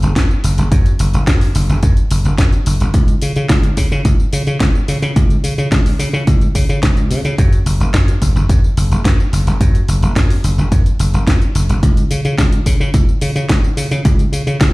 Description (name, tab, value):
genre	nu-disco, nu disco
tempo	108 BPM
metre	4/4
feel	straight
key	unclear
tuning	A4 = 440 Hz
part	dry thumbed slap bass	bass	0.0-14.7 s	F#1 to C#3	-15 LUFS	equal	tube saturation
part	house drum kit	drums	0.0-14.7 s	hi-hat, snare drum, tambourine	-23 LUFS	left 1 dB	overdrive
part	electronic kick drum	drums	0.2-14.7 s	none	-13 LUFS	equal	overdrive
room	little or no reverb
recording	played on a big sound system in a bare room, large studio reverb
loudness	-12 LUFS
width	side -22 dB against mid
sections	0.0-14.7 A section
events	none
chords	none